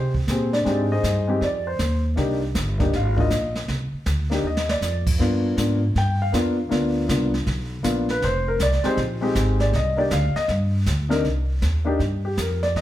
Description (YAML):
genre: jazz piano trio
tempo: 159 BPM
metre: 4/4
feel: swing 65% on 8ths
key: C minor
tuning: A4 = 440 Hz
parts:
  - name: warm concert grand piano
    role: melody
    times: 0.0-12.8 s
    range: C3 to G5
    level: -23 LUFS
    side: left 1 dB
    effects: plate reverb
  - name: upright bass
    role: bass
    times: 0.0-12.8 s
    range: F1 to C3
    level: -23 LUFS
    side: equal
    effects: none
  - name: jazz brush drum kit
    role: drums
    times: 0.1-12.8 s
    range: brushed snare drum, crash cymbal, hi-hat, kick drum, snare drum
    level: -29 LUFS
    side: right 1 dB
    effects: none
room: moderate large studio reverb, RT60 0.9 s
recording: heard from further back in the room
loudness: -20 LUFS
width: side -13 dB against mid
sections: 0.0-11.2 A section; 11.2-12.8 A section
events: grand piano solo 0.0-12.8; drum fill 4.4-4.8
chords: 0.0 Fm9; 2.2 Cm9; 5.2 G7#9; 8.2 Fm9; 9.7 Cmadd9; 10.5 Gm; 11.2 Cm7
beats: 0.27 | 0.65 1.03 1.41 1.79 | 2.17 2.55 2.93 3.31 | 3.69 4.06 4.44 4.82 | 5.20 5.58 5.95 6.33 | 6.71 7.09 7.46 7.84 | 8.22 8.60 8.97 9.35 | 9.73 10.11 10.48 10.86 | 11.24 11.62 12.00 12.37 | 12.75